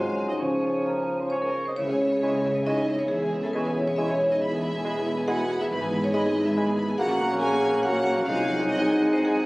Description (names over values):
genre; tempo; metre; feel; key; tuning
cinematic, playful, whimsical film cue; 138 BPM; 3/4; straight; C# minor; A4 = 439 Hz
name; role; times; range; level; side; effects
dark studio violin section; melody; 0.0-9.5 s; E5 to B5; -37 LUFS; equal; none
marimba with hard mallets; melody; 0.0-9.4 s; Db4 to Ab5; -32 LUFS; equal; none
mellow cor anglais; second line; 0.0-9.5 s; Bb4 to G#5; -35 LUFS; equal; none
mellow hollow flute section; second line; 0.0-9.5 s; Ab5 to C#6; -38 LUFS; equal; none
warm clarinet; second line; 0.0-9.5 s; F3 to E4; -33 LUFS; equal; none
warm studio violin section; second line; 0.0-9.5 s; G#4 to Ab5; -34 LUFS; equal; none
dark studio viola section; accompaniment; 0.0-9.5 s; G#3 to Bb4; -35 LUFS; right 1 dB; none
warm bassoon; accompaniment; 0.0-9.5 s; F3 to Bb3; -31 LUFS; equal; none
dark French horn section; sustained chords; 0.0-9.3 s; G#3 to Ab4; -30 LUFS; equal; none
concert harp; arpeggios; 0.0-9.5 s; Ab2 to G#5; -29 LUFS; left 1 dB; none
dark studio cello section; bass; 0.0-9.5 s; E2 to Db3; -32 LUFS; right 1 dB; none
dark studio double bass section; bass; 0.0-9.5 s; E1 to Db2; -36 LUFS; right 1 dB; none
room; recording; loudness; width
wet recital hall reverb, RT60 1.5 s; recorded on a phone in the room, club reverb, compression; -22 LUFS; side -21 dB against mid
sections
0.0-1.8 A section; 1.8-9.5 B section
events
none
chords
0.4 Db; 1.8 C#m; 3.1 C#m/E; 4.4 E; 5.7 E/G#; 7.0 Gb/Bb; 8.3 Ab7/C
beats
| 0.41 0.87 1.32 | 1.78 2.22 2.66 | 3.10 3.54 3.98 | 4.41 4.84 5.28 | 5.71 6.14 6.57 | 6.99 7.42 7.86 | 8.28 8.71 9.14